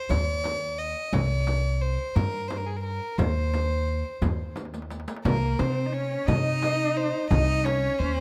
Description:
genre	Arabic maqam ensemble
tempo	58 BPM (dotted quarters)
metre	6/8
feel	straight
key	C maqam bayati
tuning	A4 = 439 Hz
part	warm violin	melody	0.0-8.2 s	Ab4 to Eb5	-32 LUFS	equal	none
part	upright bass	bass	0.1-8.2 s	C2 to C3	-29 LUFS	equal	none
part	darbuka	percussion	0.1-7.8 s	none	-38 LUFS	equal	none
part	frame drum	percussion	0.1-7.8 s	none	-32 LUFS	equal	none
part	riq	percussion	0.1-7.8 s	none	-45 LUFS	equal	none
part	rich cello	second line	5.2-8.2 s	Bb3 to Eb4	-31 LUFS	equal	none
room	light reverb, small room reverb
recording	rough home demo mix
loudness	-26 LUFS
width	mono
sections	0.0-5.3 A section; 5.3-8.2 B section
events	drum fill 4.6-5.3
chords	none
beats	0.10 | 1.13 2.16 | 3.19 4.22 | 5.25 6.28 | 7.31

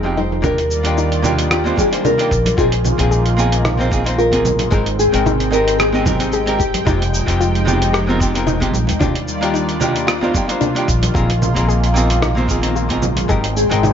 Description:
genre	sunset chillout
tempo	112 BPM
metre	4/4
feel	swing 54% on 16ths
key	unclear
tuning	A4 = 440 Hz
part	archtop guitar, miked and amplified	accompaniment	0.0-13.9 s	F3 to G5	-21 LUFS	equal	auto-pan, ping-pong delay
part	lush unison pad	sustained chords	0.0-13.9 s	Eb3 to G5	-23 LUFS	equal	chorus, phaser
part	soft round pluck	arpeggios	0.0-13.9 s	D4 to Ab4	-25 LUFS	left 4 dB	chorus, ping-pong delay
part	upright bass	bass	0.0-13.9 s	F1 to Eb2	-19 LUFS	equal	none
part	dusty soul sampler-style drum kit	drums	0.1-13.9 s	cabasa, congas, hi-hat, rim click	-22 LUFS	right 2 dB	low-pass filter on perc, low-pass filter on hats, low-pass filter on snare, low-pass filter on room
part	nylon-string guitar	melody	0.2-7.4, 13.6-13.9 s	G4 to C5	-19 LUFS	left 2 dB	ping-pong delay
part	congas	percussion	0.2-13.3 s	none	-26 LUFS	right 1 dB	none
part	electronic kick drum	drums	0.4-13.4 s	none	-22 LUFS	equal	none
room	light reverb, digital ambience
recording	nothing above 7.6 kHz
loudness	-14 LUFS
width	side -8 dB against mid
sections	0.4-13.9 A section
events	none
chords	0.4 Ebmaj9; 2.6 Bb7sus4; 4.7 Abmaj7; 6.9 Fm9; 9.0 Ebmaj9; 11.2 Bb7sus4; 13.3 Abmaj7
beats	| 0.44 0.97 1.51 2.04 | 2.58 3.12 3.65 4.19 | 4.72 5.26 5.79 6.33 | 6.87 7.40 7.94 8.47 | 9.01 9.54 10.08 10.62 | 11.15 11.69 12.22 12.76 | 13.29 13.83

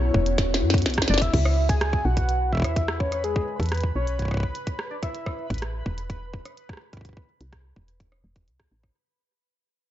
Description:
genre	IDM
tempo	126 BPM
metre	4/4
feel	straight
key	C# minor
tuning	A4 = 441 Hz
part	warm velvety synth lead	melody	0.0-5.5 s	G#4 to G#5	-29 LUFS	equal	chorus, tremolo, tape echo
part	glassy FM pad	sustained chords	0.0-1.3 s	B3 to F#5	-31 LUFS	left 5 dB	ensemble chorus, built-in reverb
part	woody FM bass	bass	0.0-8.9 s	E1 to F#2	-25 LUFS	equal	none
part	electronic kick drum	drums	0.1-8.9 s	none	-27 LUFS	equal	none
part	glitchy drum kit	drums	0.3-8.9 s	crash cymbal, hi-hat, rim click, shaker, snare drum	-29 LUFS	equal	none
part	bubbling stepped-filter texture	texture	1.5-9.0 s	B4 to B5	-40 LUFS	right 1 dB	chorus, built-in reverb
room	little or no reverb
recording	nothing above 7.6 kHz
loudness	-22 LUFS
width	side -12 dB against mid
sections	0.0-1.3 A section; 1.3-9.0 B section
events	drum fill 0.4-1.3; fade-out 1.3-9.0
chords	0.0 F#7sus4; 1.3 C#m7; 5.1 Am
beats	0.38 0.86 | 1.33 1.81 2.29 2.76 | 3.24 3.72 4.19 4.67 | 5.14 5.62 6.10 6.57 | 7.05 7.53 8.00 8.48

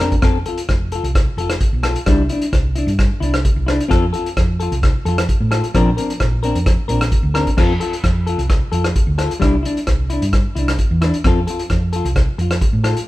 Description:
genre	highlife guitar band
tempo	131 BPM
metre	4/4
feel	straight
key	F major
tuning	A4 = 440 Hz
part	semi-hollow electric guitar	accompaniment	0.0-13.0 s	F3 to Bb4	-21 LUFS	left 3 dB	none
part	hollow-body short-scale fingered electric bass	bass	0.0-12.9 s	F1 to A2	-20 LUFS	right 1 dB	none
part	vintage drum kit	drums	0.0-13.1 s	crash cymbal, hi-hat, kick drum, rim click	-18 LUFS	equal	none
room	moderate large studio reverb, RT60 1.2 s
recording	band playing live in one room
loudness	-15 LUFS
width	side -17 dB against mid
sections	0.0-7.6 A section; 7.6-13.1 A section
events	none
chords	0.2 F; 2.1 Cadd9; 3.9 F; 5.7 Bbadd9; 7.6 F; 9.4 Cadd9; 11.2 F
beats	| 0.23 0.69 1.15 1.61 | 2.07 2.53 2.99 3.45 | 3.91 4.37 4.83 5.29 | 5.74 6.20 6.66 7.12 | 7.58 8.04 8.49 8.95 | 9.41 9.87 10.33 10.78 | 11.24 11.70 12.16 12.62

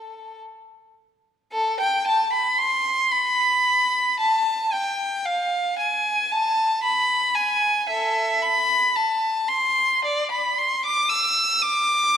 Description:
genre	classical, baroque-style suite movement for unaccompanied violin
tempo	52-59 BPM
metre	4/4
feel	rubato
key	A minor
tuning	A4 = 444 Hz
part	rich violin	solo	0.0-12.2 s	A4 to E6	-19 LUFS	equal	none
room	wet concert hall reverb, RT60 1.7 s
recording	minimal, uncompressed stereo recording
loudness	-19 LUFS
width	side -9 dB against mid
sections	0.0-1.5 A section; 1.5-12.2 B section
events	none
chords	none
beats	0.40 | 1.53 2.60 3.66 4.73 | 5.80 6.84 7.88 8.94 | 10.03 11.11 12.13

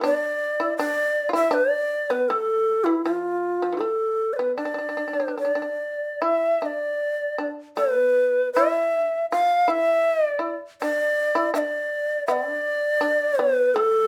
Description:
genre	japanese traditional, Japanese chamber music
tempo	72-83 BPM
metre	4/4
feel	rubato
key	D kumoi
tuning	A4 = 444 Hz
part	shamisen	second line	0.0-14.1 s	D3 to F4	-30 LUFS	equal	none
part	bright long shakuhachi	melody	0.1-14.1 s	E4 to F5	-24 LUFS	equal	none
room	moderate studio reverb, RT60 0.6 s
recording	heard from further back in the room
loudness	-23 LUFS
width	mono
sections	0.0-6.2 A section; 6.2-14.1 B section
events	none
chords	none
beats	| 0.02 0.77 1.52 2.26 | 3.01 3.77 4.55 5.37 | 6.19 6.97 7.75 8.53 | 9.29 10.06 10.81 11.54 | 12.27 13.02 13.76

